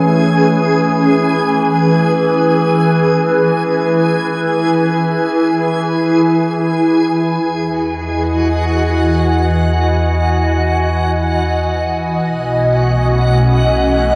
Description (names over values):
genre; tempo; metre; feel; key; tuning
ambient; free time; none; none; E major; A4 = 440 Hz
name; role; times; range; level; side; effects
soft additive organ-like pad; sustained chords; 0.0-14.2 s; B2 to G#5; -17 LUFS; equal; ensemble chorus, built-in reverb
overtone-sweeping drone; drone; 0.0-14.2 s; E3 to E4; -24 LUFS; equal; chorus, built-in reverb
backwards swelling texture; texture; 0.0-14.2 s; F#4 to G#5; -21 LUFS; equal; built-in reverb
warm sub bass; bass; 7.4-14.2 s; B1 to E2; -20 LUFS; equal; none
room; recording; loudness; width
wet huge ambient reverb, RT60 8.5 s; worn, warbling old tape, cassette tape, warbly pitch drift; -14 LUFS; mono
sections
0.0-7.4 A section; 7.4-14.2 B section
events
filter sweep on ambient pad 0.0-7.4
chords
0.0 Aadd9/E; 2.6 E; 7.4 Emaj7; 12.2 B13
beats
free time